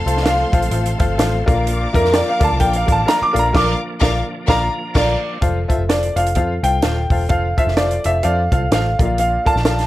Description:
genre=uptempo 1960s-style soul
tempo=128 BPM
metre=4/4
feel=swing 59% on 8ths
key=F major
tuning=A4 = 440 Hz
part: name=clear grand piano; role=melody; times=0.0-9.9 s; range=Bb4 to D6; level=-19 LUFS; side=right 1 dB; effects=slapback echo
part: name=warm studio string section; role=second line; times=0.0-5.1 s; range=A4 to D6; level=-26 LUFS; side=left 2 dB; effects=none
part: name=bright tonewheel organ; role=sustained chords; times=0.0-5.4 s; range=F3 to D4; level=-30 LUFS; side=right 1 dB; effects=slow rotary speaker, chorus vibrato
part: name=bright upright piano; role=accompaniment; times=0.1-9.8 s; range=Bb2 to G5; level=-23 LUFS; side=left 3 dB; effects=none
part: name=vintage muted picked electric bass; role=bass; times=0.1-9.9 s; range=Eb1 to F2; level=-20 LUFS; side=equal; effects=none
part: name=compact cocktail drum kit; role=drums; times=0.1-9.9 s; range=crash cymbal, hi-hat, kick drum, snare drum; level=-20 LUFS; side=right 1 dB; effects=none
room=light reverb, studio ambience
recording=none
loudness=-14 LUFS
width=side -15 dB against mid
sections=0.0-5.4 A section; 5.4-9.9 B section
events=grand piano solo 0.0-5.4; band accent 3.6-5.4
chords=0.0 F; 1.4 Bb; 5.4 F; 9.0 Bb

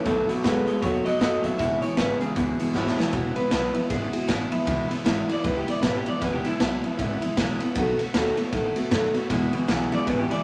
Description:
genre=rockabilly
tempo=156 BPM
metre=4/4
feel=swing 60% on 8ths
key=E major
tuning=A4 = 440 Hz
part: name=picked steel-string acoustic guitar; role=accompaniment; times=0.0-10.4 s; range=E2 to F#4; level=-29 LUFS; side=equal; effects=none
part: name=electric guitar through a small old amp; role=riff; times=0.0-3.1, 9.3-10.4 s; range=E2 to G#3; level=-30 LUFS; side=equal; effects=none
part: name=upright bass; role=bass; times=0.1-10.3 s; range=E1 to F#2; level=-36 LUFS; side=equal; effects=none
part: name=raw garage drum kit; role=drums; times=0.1-10.4 s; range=hi-hat, kick drum, ride cymbal, snare drum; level=-30 LUFS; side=equal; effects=none
part: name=electric guitar through a small old amp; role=melody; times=0.4-7.2, 9.9-10.4 s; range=E4 to E5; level=-31 LUFS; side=equal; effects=none
room=moderate small room reverb, RT60 0.5 s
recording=none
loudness=-25 LUFS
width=mono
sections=0.0-3.1 A section; 3.1-10.4 B section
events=drum fill 2.7-3.1; clean electric guitar solo 3.1-10.4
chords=0.1 B7; 1.6 E; 7.8 B7; 9.3 E

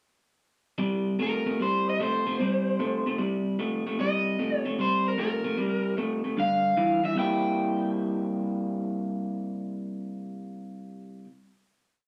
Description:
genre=blues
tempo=151 BPM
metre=4/4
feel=swing 67% on 8ths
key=C mixolydian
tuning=A4 = 439 Hz
part: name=electric guitar through a small old amp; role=riff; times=0.8-11.3 s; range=G2 to E4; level=-30 LUFS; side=equal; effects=none
part: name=crunchy overdriven guitar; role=melody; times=1.2-11.2 s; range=Bb4 to G5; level=-30 LUFS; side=equal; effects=none
room=moderate large studio reverb, RT60 0.9 s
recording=band playing live in one room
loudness=-28 LUFS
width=mono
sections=0.8-7.2 head; 7.2-10.3 final chord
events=none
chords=0.8 C5; 6.4 G5; 7.2 C7

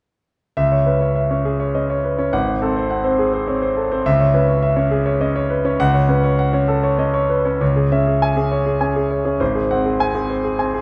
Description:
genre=classical, virtuoso piano study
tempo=102 BPM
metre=3/4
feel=rubato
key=C# minor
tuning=A4 = 442 Hz
part: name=clear concert grand piano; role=solo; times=0.6-10.8 s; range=G#1 to G#5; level=-18 LUFS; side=equal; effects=none
room=moderate recital hall reverb, RT60 1.6 s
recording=nothing above 10.5 kHz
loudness=-18 LUFS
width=mono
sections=0.6-7.6 A section; 7.6-10.8 B section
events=none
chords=0.6 C#m; 2.3 G#7; 4.1 C#m; 5.8 F#m/C#; 7.6 C#m; 9.4 G#7

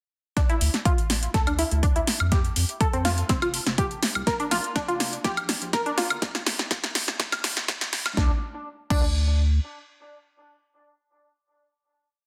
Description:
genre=progressive house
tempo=123 BPM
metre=4/4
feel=straight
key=D minor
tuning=A4 = 442 Hz
part: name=tight sequenced synth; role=arpeggios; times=0.4-9.0 s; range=C4 to Bb4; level=-31 LUFS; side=equal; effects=chorus, sidechain pumping, dub echo
part: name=deep house drum kit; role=drums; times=0.4-9.1 s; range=crash cymbal, hi-hat, snare drum, woodblock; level=-29 LUFS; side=equal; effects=overdrive, sidechain pumping on hats, sidechain pumping on perc, sidechain pumping on cymbals
part: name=electronic kick drum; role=drums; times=0.4-9.1 s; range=none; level=-27 LUFS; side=equal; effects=overdrive
part: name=round analog bass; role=bass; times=0.6-9.6 s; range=F1 to F2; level=-28 LUFS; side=equal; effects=sidechain pumping
room=moderate digital room reverb, RT60 1.0 s, digital ambience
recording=dense, heavily limited modern master, high-pass filter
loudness=-25 LUFS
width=mono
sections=0.4-8.2 build; 8.2-12.1 final note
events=build-up 0.4-8.2; drum fill 0.4-8.2; filter sweep 0.4-8.2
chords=0.4 D5; 2.3 N.C.; 4.3 Bb5; 6.2 N.C.

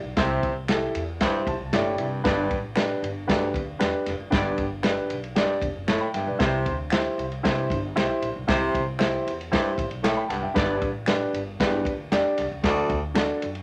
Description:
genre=uptempo 1960s-style soul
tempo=116 BPM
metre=4/4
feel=straight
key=G major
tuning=A4 = 442 Hz
part: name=upright bass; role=bass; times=0.0-13.6 s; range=E1 to C3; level=-36 LUFS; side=equal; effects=none
part: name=dark horn section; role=second line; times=0.2-13.0 s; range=G3 to E5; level=-36 LUFS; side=equal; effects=none
part: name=warm upright piano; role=accompaniment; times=0.2-13.5 s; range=D4 to B5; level=-29 LUFS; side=equal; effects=none
part: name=clear baritone saxophone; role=riff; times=0.2-13.0 s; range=D2 to C3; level=-31 LUFS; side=equal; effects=none
part: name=vintage drum kit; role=drums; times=0.2-13.6 s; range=kick drum, ride cymbal, snare drum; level=-29 LUFS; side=equal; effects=none
part: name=finger snap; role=percussion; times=0.7-13.3 s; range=none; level=-38 LUFS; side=equal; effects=none
room=light reverb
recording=none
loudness=-25 LUFS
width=mono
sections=0.0-13.6 A section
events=upright piano fill 1.2-2.3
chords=0.0 C; 2.3 G; 6.4 C; 10.6 G; 12.6 D

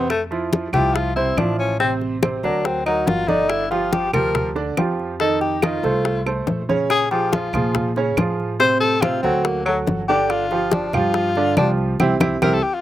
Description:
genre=Afro-Cuban jazz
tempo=141 BPM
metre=4/4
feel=straight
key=F major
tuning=A4 = 440 Hz
part: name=breathy tenor saxophone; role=second line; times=0.0-12.8 s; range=F#3 to C5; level=-20 LUFS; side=left 4 dB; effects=none
part: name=bright upright piano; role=accompaniment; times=0.0-12.6 s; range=C3 to Eb5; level=-22 LUFS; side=right 4 dB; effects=none
part: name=upright bass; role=bass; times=0.0-12.6 s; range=G1 to Bb2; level=-27 LUFS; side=equal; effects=none
part: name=bongos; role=percussion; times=0.1-12.5 s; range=none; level=-25 LUFS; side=left 6 dB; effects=slapback echo
part: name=claves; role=percussion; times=0.1-12.5 s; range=none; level=-29 LUFS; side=right 3 dB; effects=none
part: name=congas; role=percussion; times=0.1-12.5 s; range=none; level=-24 LUFS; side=left 1 dB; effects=none
room=little or no reverb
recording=recorded outdoors, with no room sound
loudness=-17 LUFS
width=side -13 dB against mid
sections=0.1-12.8 A section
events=tenor saxophone solo 0.0-12.8; band accent 12.0-12.8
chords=0.1 Fmaj7; 1.8 Amadd11; 2.6 Daug; 3.5 Gm7; 5.2 F7b13; 6.9 Bbm7; 8.6 D7#9; 9.5 D; 10.3 G5; 12.0 C

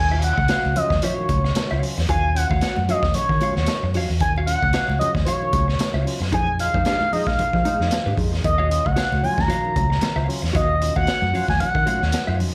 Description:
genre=funk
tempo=113 BPM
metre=4/4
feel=swing 56% on 16ths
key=Eb minor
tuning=A4 = 438 Hz
part: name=expressive synth lead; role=melody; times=0.0-12.4 s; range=Db5 to Bb5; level=-25 LUFS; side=equal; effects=chorus, slapback echo
part: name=string machine, full ensemble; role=sustained chords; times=0.0-12.5 s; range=Eb3 to Ab4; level=-40 LUFS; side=equal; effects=none
part: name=tonewheel organ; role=stabs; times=0.0-12.5 s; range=Eb3 to F4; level=-35 LUFS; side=equal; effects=overdrive, chorus vibrato, slow rotary speaker, slapback echo, tape echo
part: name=vintage muted fingered electric bass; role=bass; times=0.0-12.5 s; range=Db2 to F3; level=-25 LUFS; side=equal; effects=none
part: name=semi-hollow electric guitar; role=accompaniment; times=0.1-12.4 s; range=Eb4 to Gb5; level=-33 LUFS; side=equal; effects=lush chorus, slapback echo
part: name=congas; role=percussion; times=0.1-12.4 s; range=none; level=-34 LUFS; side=equal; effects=slapback echo
part: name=raw garage drum kit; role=drums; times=0.2-12.5 s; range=hi-hat, kick drum, snare drum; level=-27 LUFS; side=equal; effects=none
room=light reverb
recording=live gig heard through the venue's PA, club reverb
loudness=-21 LUFS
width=mono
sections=0.0-12.5 A section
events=none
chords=0.0 Ebm9; 6.3 Fm7; 8.4 Ebm9

